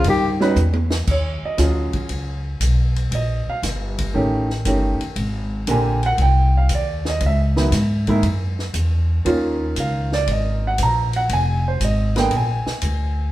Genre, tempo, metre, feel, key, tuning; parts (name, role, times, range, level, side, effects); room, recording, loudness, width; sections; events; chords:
jazz, small-group swing and bop; 117 BPM; 4/4; swing 69% on 8ths; A4 = 440 Hz
upright bass; bass; 0.0-13.3 s; F1 to Ab2; -20 LUFS; equal
compact cocktail drum kit; drums; 0.0-13.0 s; crash cymbal, hi-hat, kick drum, ride cymbal, snare drum, toms; -29 LUFS; equal
clear grand piano; accompaniment; 0.4-13.3 s; D3 to Bb5; -22 LUFS; right 2 dB
moderate large studio reverb, RT60 1.2 s; band playing live in one room; -17 LUFS; side -15 dB against mid
0.0-1.1 A section; 1.1-13.3 B section
drum fill 0.6-1.1
0.1 D#7alt; 1.1 Ebm11; 3.1 Gm; 4.1 A7#11; 5.2 Abmaj9#11; 7.2 Dbm11; 8.2 Esus2; 9.3 Ab13sus4; 11.3 Fm; 12.3 Bb7